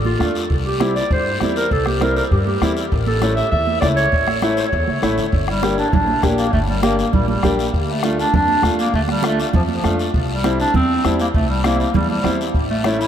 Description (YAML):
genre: latin, cumbia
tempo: 199 BPM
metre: 4/4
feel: straight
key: D minor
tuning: A4 = 439 Hz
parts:
  - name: upright bass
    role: bass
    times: 0.0-13.0 s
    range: G1 to G2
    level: -23 LUFS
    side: equal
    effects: none
  - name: warm clarinet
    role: melody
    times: 0.1-13.1 s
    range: F3 to E5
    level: -20 LUFS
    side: equal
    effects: none
  - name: congas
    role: percussion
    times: 0.1-13.0 s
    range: none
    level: -26 LUFS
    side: right 8 dB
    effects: none
  - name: clear upright piano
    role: accompaniment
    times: 0.2-13.1 s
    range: G3 to G4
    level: -22 LUFS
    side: left 2 dB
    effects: none
  - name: bombo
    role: percussion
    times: 0.2-13.0 s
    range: none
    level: -23 LUFS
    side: equal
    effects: none
  - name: guiro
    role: percussion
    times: 0.2-13.1 s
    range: none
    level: -32 LUFS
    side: left 6 dB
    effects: none
room: wet huge ambient reverb, RT60 9.3 s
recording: in a vast, echoing space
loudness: -15 LUFS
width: side -9 dB against mid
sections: 0.0-5.3 A section; 5.3-13.1 B section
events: none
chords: 0.0 Dm; 0.5 C; 2.9 A; 5.3 Gm; 7.7 Dm; 10.1 C; 12.5 A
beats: 0.20 | 0.50 0.81 1.11 1.41 | 1.71 2.01 2.31 2.62 | 2.92 3.22 3.52 3.82 | 4.12 4.42 4.73 5.03 | 5.33 5.63 5.93 6.23 | 6.53 6.83 7.13 7.43 | 7.74 8.04 8.34 8.64 | 8.94 9.24 9.54 9.84 | 10.14 10.44 10.74 11.04 | 11.35 11.65 11.95 12.25 | 12.55 12.85